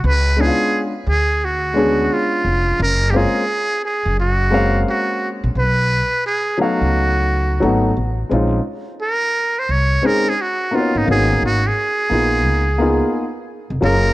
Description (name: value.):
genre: hip hop, jazz-hop.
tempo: 87 BPM.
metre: 4/4.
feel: swing 64% on 16ths.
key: Bb minor.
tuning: A4 = 441 Hz.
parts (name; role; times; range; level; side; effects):
upright bass; bass; 0.0-14.1 s; F1 to D2; -18 LUFS; equal; tube saturation.
trumpet with metal mute; melody; 0.1-14.1 s; Eb4 to Db5; -19 LUFS; right 2 dB; none.
dark baby grand piano; accompaniment; 0.4-14.1 s; F#3 to F5; -19 LUFS; left 1 dB; none.
room: light reverb, small room ambience.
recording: worn, warbling old tape, cassette tape, warbly pitch drift.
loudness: -15 LUFS.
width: side -17 dB against mid.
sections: 0.0-8.3 A section; 8.3-14.1 B section.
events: muted trumpet solo 8.3-14.1.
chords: 0.0 Db7b9; 2.8 Gbmaj9#11; 5.6 B7#11; 8.3 Bbm11; 11.1 Abm11; 12.4 Db13.